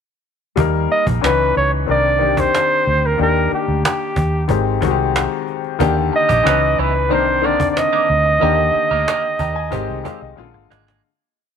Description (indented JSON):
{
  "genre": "lush 1970s-style soul",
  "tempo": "92 BPM",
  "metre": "4/4",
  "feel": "straight",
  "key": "Eb major",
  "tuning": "A4 = 441 Hz",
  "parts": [
    { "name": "clear grand piano", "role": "accompaniment", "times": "0.6-11.1 s", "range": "Db3 to Bb5", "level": "-20 LUFS", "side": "left 13 dB", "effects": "none" },
    { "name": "vintage muted fingered electric bass", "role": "bass", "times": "0.6-11.0 s", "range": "Ab1 to Eb2", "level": "-21 LUFS", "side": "right 2 dB", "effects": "none" },
    { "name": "cajon", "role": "drums", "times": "0.6-11.0 s", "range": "none", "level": "-22 LUFS", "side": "right 2 dB", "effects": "none" },
    { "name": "clear flugelhorn", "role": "melody", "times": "0.9-10.4 s", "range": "G4 to Eb5", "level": "-17 LUFS", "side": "right 2 dB", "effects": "none" },
    { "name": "clean electric guitar", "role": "riff", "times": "5.8-11.0 s", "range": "Eb3 to Bb4", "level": "-25 LUFS", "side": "right 15 dB", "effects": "wah, wide subtle chorus" }
  ],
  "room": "light reverb, small room ambience",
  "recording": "1960s-style stereo with parts hard left and right",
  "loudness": "-14 LUFS",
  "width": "side -7 dB against mid",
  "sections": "0.6-11.0 verse",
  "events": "fade-out 8.4-11.0; grand piano fill 9.1-11.0; drum fill 10.4-11.0",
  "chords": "0.6 Eb; 1.2 Dbm9; 1.9 Cm9; 3.2 Ebmaj7; 4.5 Abmaj7; 5.8 Ebmaj7; 6.5 Dbm9; 7.1 Cm9; 8.4 Ebmaj7; 9.7 Abmaj7; 10.4 Bb7",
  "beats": "| 0.57 1.23 1.88 2.53 | 3.18 3.84 4.49 5.14 | 5.80 6.45 7.11 7.76 | 8.42 9.07 9.72 10.38"
}